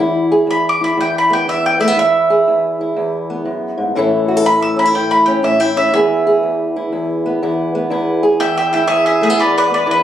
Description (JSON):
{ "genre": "acoustic country blues, solo or duo", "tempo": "121 BPM", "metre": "4/4", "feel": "swing 66% on 8ths", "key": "E major", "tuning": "A4 = 440 Hz", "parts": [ { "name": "fingerpicked old ladder-braced acoustic guitar", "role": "accompaniment", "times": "0.0-10.0 s", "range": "E2 to A4", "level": "-16 LUFS", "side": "equal", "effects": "none" }, { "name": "bowl-back mandolin", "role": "melody", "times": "0.5-10.0 s", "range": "G#4 to E6", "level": "-14 LUFS", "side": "right 1 dB", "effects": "none" } ], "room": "light reverb", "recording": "recorded on a phone in the room, club reverb", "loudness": "-13 LUFS", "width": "side -11 dB against mid", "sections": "0.0-10.0 A section", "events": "mandolin solo 0.0-10.0", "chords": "0.0 E; 3.9 A; 5.9 E" }